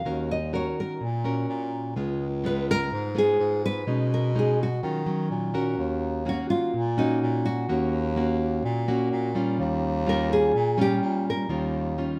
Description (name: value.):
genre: bossa nova.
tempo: 126 BPM.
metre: 4/4.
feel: straight.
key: Eb minor.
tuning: A4 = 440 Hz.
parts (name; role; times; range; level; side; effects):
nylon-string guitar; melody; 0.0-12.2 s; Eb4 to F5; -29 LUFS; equal; none.
nylon-string guitar; accompaniment; 0.0-12.2 s; Ab2 to Bb4; -30 LUFS; equal; none.
clear bass clarinet; bass; 0.0-12.1 s; Db2 to Eb3; -32 LUFS; equal; none.
room: moderate echo chamber reverb, RT60 1.7 s.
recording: none.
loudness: -26 LUFS.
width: mono.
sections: 0.0-5.8 A section; 5.8-12.2 A section.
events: none.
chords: 0.1 Ebm7; 2.0 Db7; 3.9 B69; 4.8 Ebm9; 5.8 Ebm7; 9.6 Eb9.